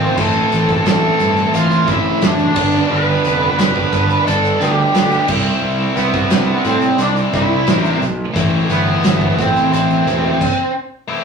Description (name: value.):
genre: quiet-loud alternative rock.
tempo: 88 BPM.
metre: 4/4.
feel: straight.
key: A minor.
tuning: A4 = 440 Hz.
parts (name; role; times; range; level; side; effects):
octave-fuzz lead guitar; melody; 0.0-10.7 s; B3 to B5; -17 LUFS; right 1 dB; distortion.
thick fuzz guitar; riff; 0.0-10.4 s; G2 to F4; -21 LUFS; right 4 dB; distortion.
tight distorted guitar; riff; 0.0-11.2 s; G2 to F4; -20 LUFS; left 5 dB; distortion.
fuzz fingered electric bass; bass; 0.0-10.3 s; E1 to A2; -20 LUFS; equal; overdrive.
loose indie drum kit; drums; 0.2-10.6 s; crash cymbal, hi-hat, kick drum, snare drum; -20 LUFS; right 1 dB; none.
room: moderate booth ambience, RT60 0.2 s.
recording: rough rehearsal-room recording, tube saturation, studio reverb.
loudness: -13 LUFS.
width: side -6 dB against mid.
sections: 0.0-11.1 A section.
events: stop 10.4-11.1.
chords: 0.2 Am; 2.6 Gadd9; 5.3 C; 8.4 Am.